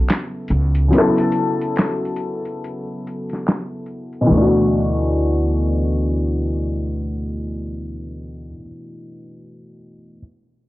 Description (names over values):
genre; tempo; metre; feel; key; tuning
lo-fi hip hop; 71 BPM; 4/4; swing 62% on 16ths; D major; A4 = 440 Hz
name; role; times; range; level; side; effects
dark upright piano; accompaniment; 0.0-10.2 s; B2 to A4; -20 LUFS; left 1 dB; cassette tape, low-pass filter, plate reverb
boom bap sampler-style drum kit; drums; 0.1-4.3 s; handclaps, hi-hat, snare drum; -19 LUFS; equal; none
upright bass; bass; 0.5-8.6 s; C#2 to D2; -20 LUFS; equal; none
room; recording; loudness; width
moderate studio ambience, RT60 0.5 s; low-pass filter; -17 LUFS; side -18 dB against mid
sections
0.0-4.3 A section; 4.3-7.7 B section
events
filter sweep 0.0-4.3; break 0.9-4.3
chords
0.0 A; 0.9 A69/C#; 4.3 Dadd9